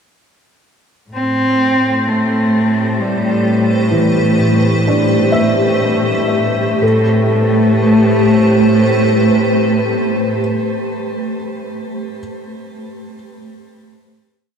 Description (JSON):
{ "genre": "ambient", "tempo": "63 BPM", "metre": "3/4", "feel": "straight", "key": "A minor", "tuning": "A4 = 441 Hz", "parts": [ { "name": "dark cello", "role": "melody", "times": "1.1-10.4 s", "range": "G3 to C4", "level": "-18 LUFS", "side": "right 1 dB", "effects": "shimmer reverb, ping-pong delay" }, { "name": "granular cloud pad", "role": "sustained chords", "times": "2.7-10.5 s", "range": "A3 to C5", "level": "-16 LUFS", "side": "equal", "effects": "built-in reverb, shimmer reverb" }, { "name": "rich chamber cello section", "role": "bass", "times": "1.1-10.4 s", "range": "A2", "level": "-18 LUFS", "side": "equal", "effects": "none" }, { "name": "felt-muted upright piano", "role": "arpeggios", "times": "3.9-12.2 s", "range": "E3 to E5", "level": "-19 LUFS", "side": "equal", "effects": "shimmer reverb, ping-pong delay" } ], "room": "wet huge ambient reverb, RT60 8.6 s", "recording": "dark, warm production", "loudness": "-12 LUFS", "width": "side -7 dB against mid", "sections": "1.1-6.8 A section; 6.8-9.7 final chord", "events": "fade-in on ambient pad 1.1-6.8; fade-in on felt piano 1.1-6.8", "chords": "1.1 Am9", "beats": "| 1.11 2.06 3.02 | 3.97 4.92 5.87 | 6.83 7.78 8.73" }